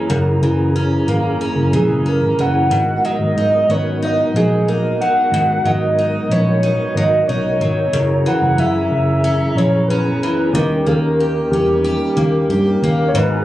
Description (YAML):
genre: indie pop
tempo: 92 BPM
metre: 4/4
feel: straight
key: G# minor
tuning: A4 = 442 Hz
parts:
  - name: mellow tonewheel organ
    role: accompaniment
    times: 0.0-13.4 s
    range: B3 to A#5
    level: -23 LUFS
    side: right 2 dB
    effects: chorus vibrato, stopped rotary speaker, plate reverb
  - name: picked steel-string acoustic guitar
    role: accompaniment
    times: 0.0-13.4 s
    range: F#2 to G4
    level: -20 LUFS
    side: left 2 dB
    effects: wide subtle chorus, warbly pitch drift, plate reverb
  - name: vintage muted fingered electric bass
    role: bass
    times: 0.1-13.4 s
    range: F#1 to G#2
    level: -18 LUFS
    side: equal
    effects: none
  - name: soft octave-layered synth lead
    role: melody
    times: 1.8-13.4 s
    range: G4 to F#5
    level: -18 LUFS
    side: equal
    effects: lush chorus, plate reverb
  - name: warm analog pad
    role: sustained chords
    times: 13.1-13.4 s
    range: G#4 to F#5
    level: -28 LUFS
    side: right 3 dB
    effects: chorus
room: moderate studio reverb, RT60 0.7 s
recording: recorded on a phone in the room, club reverb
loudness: -14 LUFS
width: side -14 dB against mid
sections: 0.0-13.2 A section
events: none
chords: 0.0 F#7; 2.7 G#m7; 7.9 F#7; 10.5 D#7